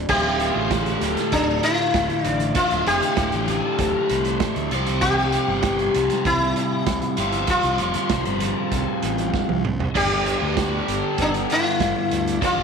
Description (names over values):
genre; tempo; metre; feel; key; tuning
psychedelic rock; 97 BPM; 4/4; straight; D minor; A4 = 440 Hz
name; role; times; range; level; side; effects
biting overdriven guitar; riff; 0.0-12.6 s; D2 to C5; -24 LUFS; left 1 dB; flanger
fuzz fingered electric bass; bass; 0.0-12.6 s; D1 to D2; -28 LUFS; equal; overdrive
sitar; melody; 0.1-12.6 s; D4 to G4; -23 LUFS; left 1 dB; slapback echo
vintage drum kit; drums; 0.1-12.6 s; crash cymbal, hi-hat, kick drum, snare drum, toms; -27 LUFS; right 5 dB; none
congas; percussion; 0.6-9.9 s; none; -38 LUFS; left 9 dB; none
room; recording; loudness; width
moderate echo chamber reverb, RT60 2.1 s; 1960s-style stereo; -19 LUFS; side -6 dB against mid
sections
0.0-9.9 A section; 9.9-12.6 A section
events
drum fill 9.3-9.9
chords
0.1 Dm; 4.7 Csus4; 9.9 G